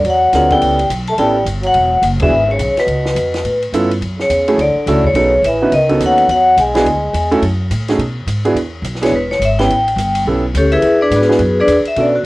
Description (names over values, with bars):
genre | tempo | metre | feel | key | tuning
jazz, small-group swing and bop | 212 BPM | 4/4 | swing 61% on 8ths | E mixolydian | A4 = 439 Hz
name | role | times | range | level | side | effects
vibraphone with medium hard mallets | melody | 0.0-12.3 s | B3 to A5 | -13 LUFS | left 1 dB | none
trombone with cup mute | second line | 0.0-7.4 s | B2 to A3 | -20 LUFS | right 1 dB | none
upright bass | bass | 0.0-12.3 s | E1 to B2 | -19 LUFS | equal | none
compact cocktail drum kit | drums | 0.0-12.0 s | hi-hat, kick drum, ride cymbal, snare drum | -26 LUFS | equal | cassette tape
warm baby grand piano | accompaniment | 0.3-12.1 s | A3 to B4 | -16 LUFS | right 2 dB | none
room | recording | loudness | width
moderate studio reverb, RT60 0.6 s | home recording on cassette | -12 LUFS | side -19 dB against mid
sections
0.0-8.6 A section; 8.6-12.3 B section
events
band accent 2.2; vibraphone solo 8.6-12.3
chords
0.0 A9; 1.7 Eadd9; 2.9 C#7alt; 4.0 F#m7; 5.2 B9; 6.3 E9; 7.4 F#m; 8.0 B5; 8.6 E; 9.7 A9; 10.8 E9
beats
0.05 0.33 | 0.61 0.90 1.18 1.47 | 1.75 2.03 2.31 2.60 | 2.88 3.17 3.45 3.73 | 4.02 4.30 4.58 4.87 | 5.15 5.43 5.72 6.00 | 6.29 6.57 6.85 7.14 | 7.42 7.70 7.99 8.27 | 8.55 8.84 9.12 9.41 | 9.69 9.97 10.26 10.54 | 10.83 11.11 11.39 11.68 | 11.96 12.25